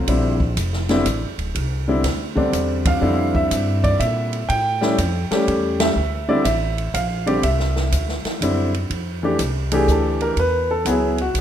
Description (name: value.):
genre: jazz piano trio.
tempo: 122 BPM.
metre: 3/4.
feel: swing 66% on 8ths.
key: F major.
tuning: A4 = 440 Hz.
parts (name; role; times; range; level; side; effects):
clear grand piano; melody; 0.0-11.4 s; D3 to G5; -20 LUFS; equal; none.
upright bass; bass; 0.0-11.4 s; D1 to Bb2; -23 LUFS; equal; none.
open jazz drum kit; drums; 0.1-11.4 s; hi-hat, kick drum, ride cymbal, snare drum; -26 LUFS; right 1 dB; none.
room: moderate digital room reverb, RT60 1.1 s, small room ambience.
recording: rough home demo mix.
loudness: -18 LUFS.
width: side -10 dB against mid.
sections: 0.0-8.9 A section; 8.9-11.4 B section.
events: band accent 2.8, 5.7; grand piano solo 8.9-11.4.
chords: 0.1 Bbmaj9#11; 1.6 Cadd9; 3.0 Fsus2; 4.5 A7; 6.0 Dsus4; 7.4 Cadd9; 8.9 F6; 10.4 E.